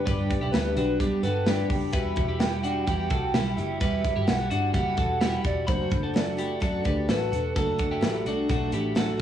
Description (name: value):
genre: jangly indie pop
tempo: 128 BPM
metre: 4/4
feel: straight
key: unclear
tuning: A4 = 440 Hz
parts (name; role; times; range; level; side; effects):
- warbly nostalgic lead; melody; 0.0-8.9 s; G4 to G5; -30 LUFS; right 1 dB; chorus, cassette tape, analog delay, plate reverb
- picked twelve-string acoustic guitar; accompaniment; 0.0-9.2 s; E2 to G4; -31 LUFS; right 4 dB; plate reverb
- twelve-string electric guitar; arpeggios; 0.0-9.2 s; D4 to B5; -32 LUFS; left 6 dB; analog delay, plate reverb
- vintage muted picked electric bass; bass; 0.0-9.1 s; E1 to F#2; -30 LUFS; equal; none
- modern studio drum kit; drums; 0.1-9.1 s; hi-hat, kick drum, snare drum; -28 LUFS; equal; vintage 12-bit sampler grit, cassette tape
room: light reverb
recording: home recording on cassette, small room ambience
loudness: -23 LUFS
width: side -10 dB against mid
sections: 0.0-9.2 A section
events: none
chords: 0.0 G; 1.9 Emadd9